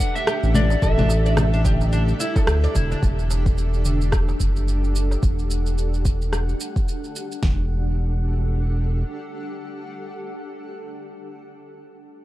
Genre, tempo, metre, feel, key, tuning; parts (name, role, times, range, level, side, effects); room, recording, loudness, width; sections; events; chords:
organic downtempo; 109 BPM; 4/4; swing 58% on 16ths; E minor; A4 = 440 Hz
electric slide guitar; melody; 0.0-2.4 s; D5 to F#5; -28 LUFS; equal; digital delay
granular cloud pad; sustained chords; 0.0-10.4 s; D4 to F#5; -31 LUFS; equal; built-in reverb, vintage 12-bit sampler grit, sidechain pumping
oud; arpeggios; 0.0-3.0 s; D4 to D5; -29 LUFS; equal; vintage 12-bit sampler grit, digital delay
deep house drum kit; drums; 0.0-7.6 s; kick drum, snare drum; -22 LUFS; equal
electronic shaker, rim click and congas; drums; 0.0-7.4 s; -26 LUFS; left 1 dB
darbuka; percussion; 0.0-5.2 s; -33 LUFS; right 2 dB
smooth gliding synth bass; bass; 0.4-9.0 s; E1 to D2; -20 LUFS; equal; sidechain pumping
digital ambience; dark, warm production; -19 LUFS; side -16 dB against mid
0.0-3.0 A section; 3.0-7.4 B section; 7.4-9.6 C section
filter sweep on analog synth bass 3.0-7.4; filter sweep on ambient pad 3.0-7.4
0.0 Em11